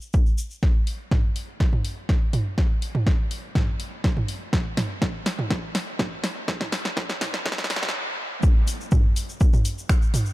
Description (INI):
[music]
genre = techno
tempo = 123 BPM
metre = 4/4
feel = straight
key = none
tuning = none
[part]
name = tube shaker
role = percussion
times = 0.0-0.6, 8.4-10.3 s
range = none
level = -37 LUFS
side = left 3 dB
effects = none
[part]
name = electronic kick drum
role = drums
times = 0.1-10.0 s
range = none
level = -21 LUFS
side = equal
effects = none
[part]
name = house drum kit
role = drums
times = 0.6-10.2 s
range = finger snaps, hi-hat, snare drum, toms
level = -27 LUFS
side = right 1 dB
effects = none
[sound]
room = little or no reverb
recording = dark, warm production, high-pass filter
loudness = -21 LUFS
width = side -18 dB against mid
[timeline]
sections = 0.6-8.4 A section; 8.4-10.3 B section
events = build-up 0.6-8.4; drum fill 0.6-7.9; filter sweep 0.6-8.4; stop 7.9-8.4; drop 8.4-10.3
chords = none